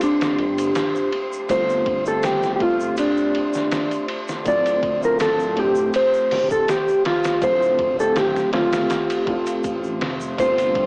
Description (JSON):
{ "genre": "trip hop", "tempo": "81 BPM", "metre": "4/4", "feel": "swing 54% on 16ths", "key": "D minor", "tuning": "A4 = 440 Hz", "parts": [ { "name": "mellow electric guitar", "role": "melody", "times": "0.0-10.9 s", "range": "D4 to D5", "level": "-22 LUFS", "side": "equal", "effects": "cassette tape" }, { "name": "felt-muted upright piano", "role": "accompaniment", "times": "0.0-10.9 s", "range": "A3 to G4", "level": "-28 LUFS", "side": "equal", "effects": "harmonic tremolo, cassette tape" }, { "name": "trip hop sampler-style drum kit", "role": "drums", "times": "0.0-10.9 s", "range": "hi-hat, kick drum, ride cymbal, snare drum", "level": "-31 LUFS", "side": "equal", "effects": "vintage 12-bit sampler grit, small room ambience, cassette tape" }, { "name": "tube shaker", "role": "percussion", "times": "0.0-10.7 s", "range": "none", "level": "-46 LUFS", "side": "equal", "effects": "none" }, { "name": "wind-like tuned noise texture", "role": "texture", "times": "0.0-10.4 s", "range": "C5", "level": "-38 LUFS", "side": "equal", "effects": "built-in reverb, cassette tape" }, { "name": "dark detuned saw bass", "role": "bass", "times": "0.4-10.9 s", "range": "D1 to A1", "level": "-33 LUFS", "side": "equal", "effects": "transformer saturation" }, { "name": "clear studio string section", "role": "sustained chords", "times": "10.4-10.9 s", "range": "C3 to F4", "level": "-35 LUFS", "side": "equal", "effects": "none" } ], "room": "moderate spring reverb, RT60 2.9 s", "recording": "home recording on cassette, vinyl crackle, small speaker sound", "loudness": "-21 LUFS", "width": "mono", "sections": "0.0-10.4 A section", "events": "none", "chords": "0.0 G9sus4; 4.5 Dm7" }